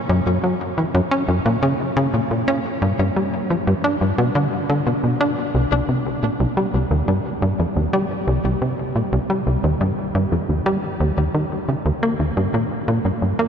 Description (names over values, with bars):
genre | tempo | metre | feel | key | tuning
ambient | 88 BPM | 4/4 | straight | unclear | A4 = 440 Hz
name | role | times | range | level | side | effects
tight sequencer bass | solo | 0.1-13.5 s | C2 to D4 | -18 LUFS | equal | ping-pong delay
room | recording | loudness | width
wet huge ambient reverb, RT60 8.1 s | in a vast, echoing space | -18 LUFS | side -7 dB against mid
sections
0.0-5.4 A section; 5.4-13.5 B section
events
none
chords
none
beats
0.60 1.29 1.97 | 2.65 3.33 4.01 4.70 | 5.38 6.06 6.74 7.42 | 8.11 8.79 9.47 10.15 | 10.83 11.51 12.20 12.88